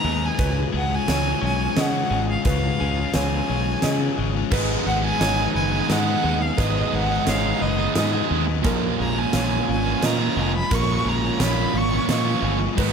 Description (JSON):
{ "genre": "post-rock", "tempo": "87 BPM", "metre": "3/4", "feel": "straight", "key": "unclear", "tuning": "A4 = 442 Hz", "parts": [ { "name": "warm violin", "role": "melody", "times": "0.0-12.6 s", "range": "D#5 to C#6", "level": "-27 LUFS", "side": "right 1 dB", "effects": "tape echo" }, { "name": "warbly tape-like pad", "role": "sustained chords", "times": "0.0-12.9 s", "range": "E#3 to G#5", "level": "-36 LUFS", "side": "left 1 dB", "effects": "none" }, { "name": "felt-muted upright piano", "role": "arpeggios", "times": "0.0-12.9 s", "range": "A#4 to D#5", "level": "-34 LUFS", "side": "right 2 dB", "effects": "tape echo" }, { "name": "twelve-string electric guitar", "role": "arpeggios", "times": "0.0-12.9 s", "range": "G#2 to E#4", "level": "-32 LUFS", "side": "left 3 dB", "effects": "none" }, { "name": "sludgy distorted guitar", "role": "riff", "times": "0.0-12.9 s", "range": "G#2 to E#4", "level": "-28 LUFS", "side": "left 14 dB", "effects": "overdrive" }, { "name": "growling fingered electric bass", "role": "bass", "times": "0.0-12.9 s", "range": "E#1 to C#3", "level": "-25 LUFS", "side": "equal", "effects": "overdrive" }, { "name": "huge arena drum kit", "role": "drums", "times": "0.4-12.9 s", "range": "crash cymbal, hi-hat, kick drum, snare drum", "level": "-26 LUFS", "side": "equal", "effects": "none" }, { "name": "fuzz guitar", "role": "riff", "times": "4.5-12.9 s", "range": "G#2 to G#4", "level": "-26 LUFS", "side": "right 15 dB", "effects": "distortion" } ], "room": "light reverb, studio reverb", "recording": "none", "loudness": "-19 LUFS", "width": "side -6 dB against mid", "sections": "0.0-12.9 A section", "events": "none", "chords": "0.4 C#; 4.5 G#m; 8.7 A#m7" }